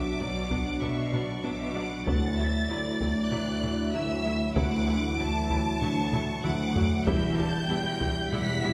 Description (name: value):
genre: cinematic, hybrid orchestral and electronic film score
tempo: 96 BPM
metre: 4/4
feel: straight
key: unclear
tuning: A4 = 440 Hz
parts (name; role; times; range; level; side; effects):
- rich symphonic violin section; melody; 0.0-8.7 s; C#6 to B6; -38 LUFS; equal; none
- warm symphonic violin section; second line; 0.0-8.7 s; D5 to A5; -39 LUFS; equal; none
- deep dark ambient pad; sustained chords; 0.0-8.7 s; E3 to E5; -40 LUFS; equal; chorus, built-in reverb
- mellow French horn section; sustained chords; 0.0-8.7 s; F#3 to E4; -40 LUFS; equal; none
- harp-like synth pluck; arpeggios; 0.0-8.7 s; D3 to B4; -39 LUFS; equal; none
- clear symphonic cello section; bass; 0.0-8.7 s; D2 to B2; -34 LUFS; equal; none
- rich symphonic double bass section; bass; 0.0-8.7 s; E1 to D2; -37 LUFS; equal; none
- warm symphonic viola section; accompaniment; 0.2-8.7 s; F#3 to E4; -40 LUFS; equal; none
- solo taiko drums; drums; 0.5-8.7 s; none; -35 LUFS; equal; none
room: wet recital hall reverb, RT60 1.6 s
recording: recorded in a church or concert hall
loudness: -28 LUFS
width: mono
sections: 0.0-8.7 A section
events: drum fill 6.1-7.1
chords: 0.0 Bmadd9; 2.1 Dadd9; 7.1 Em